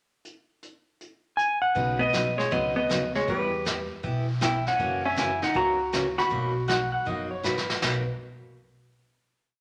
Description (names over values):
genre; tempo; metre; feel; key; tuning
country, western swing; 158 BPM; 4/4; swing 65% on 8ths; B major; A4 = 440 Hz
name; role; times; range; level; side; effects
vintage brush drum kit; drums; 0.2-8.1 s; brushed snare drum, china cymbal, hi-hat, kick drum, snare drum; -35 LUFS; equal; none
clean lap steel guitar; melody; 1.4-7.4 s; B4 to B5; -29 LUFS; equal; none
picked steel-string acoustic guitar; accompaniment; 1.7-8.0 s; B2 to B4; -34 LUFS; equal; none
upright bass; bass; 1.8-8.1 s; F#1 to F#2; -36 LUFS; equal; none
hollow-body jazz guitar; second line; 2.0-7.4 s; G3 to F#4; -32 LUFS; equal; none
clean lap steel guitar; second line; 6.7-8.1 s; B4 to F#5; -33 LUFS; equal; none
room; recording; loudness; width
wet large studio reverb, RT60 1.4 s; none; -26 LUFS; mono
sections
0.2-1.8 pickup bar; 1.8-7.8 A section; 7.8-9.3 final chord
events
drum fill 7.4-7.8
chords
0.2 N.C.; 1.8 Badd9; 3.3 Em; 4.8 F#7; 6.3 Bmaj7